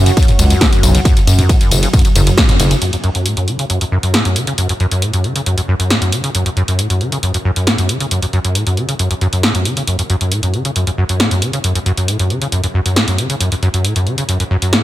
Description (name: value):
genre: driving peak-time techno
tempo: 136 BPM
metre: 4/4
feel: straight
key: F# minor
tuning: A4 = 440 Hz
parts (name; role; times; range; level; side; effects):
- acid bass, saw; riff; 0.0-14.8 s; F#2 to C#3; -16 LUFS; equal; ensemble chorus, sidechain pumping, ping-pong delay
- gritty driven synth bass; bass; 0.0-2.7 s; F#1 to F#2; -12 LUFS; equal; sidechain pumping
- analog drone; drone; 0.0-2.9 s; F#3 to F#4; -24 LUFS; right 1 dB; chorus, phaser, sidechain pumping
- punchy analog drum machine; drums; 0.1-14.8 s; hi-hat, ride cymbal, snare drum, tambourine, toms; -17 LUFS; equal; none
- electronic kick drum; drums; 0.2-2.5 s; none; -13 LUFS; equal; none
room: light reverb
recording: none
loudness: -12 LUFS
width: side -14 dB against mid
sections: 0.0-2.8 A section; 2.8-14.8 B section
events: drop 0.0-2.8; band accent 2.4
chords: 0.0 F#5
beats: 0.17 0.61 | 1.05 1.49 1.93 2.38 | 2.82 3.26 3.70 4.14 | 4.58 5.02 5.46 5.91 | 6.35 6.79 7.23 7.67 | 8.11 8.55 8.99 9.43 | 9.88 10.32 10.76 11.20 | 11.64 12.08 12.52 12.96 | 13.40 13.85 14.29 14.73